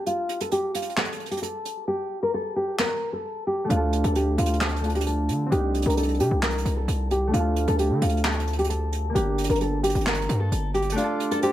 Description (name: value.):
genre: hip hop, trap.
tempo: 132 BPM.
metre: 4/4.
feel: half-time.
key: D phrygian.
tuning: A4 = 438 Hz.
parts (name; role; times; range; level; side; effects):
nylon-string guitar; melody; 0.0-11.5 s; F4 to Bb4; -26 LUFS; left 1 dB; low-pass filter.
concert harp; accompaniment; 0.0-11.5 s; A3 to A4; -28 LUFS; right 1 dB; low-pass filter.
jazz brush drum kit; drums; 0.1-11.5 s; handclaps, hi-hat, snare drum; -30 LUFS; right 2 dB; none.
distorted 808-style bass; bass; 3.7-11.0 s; G1 to D3; -25 LUFS; equal; distortion.
breathy flute-like synth lead; second line; 11.0-11.5 s; C5 to D5; -31 LUFS; left 2 dB; chorus, tape echo.
room: light reverb, small room ambience.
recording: none.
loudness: -22 LUFS.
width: side -13 dB against mid.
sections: 0.0-11.5 A section.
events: break 0.0-3.7; filter sweep 0.0-11.0; hi-hats muted 1.9-3.7; kick muted 11.0-11.5.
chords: 0.1 N.C.; 3.7 Dm; 5.5 Cmadd9; 7.3 Dm; 9.2 Gm; 11.0 Dm.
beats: | 0.06 0.52 0.97 1.43 | 1.88 2.34 2.79 3.25 | 3.70 4.15 4.61 5.06 | 5.52 5.97 6.43 6.88 | 7.34 7.79 8.24 8.70 | 9.15 9.61 10.06 10.52 | 10.97 11.43.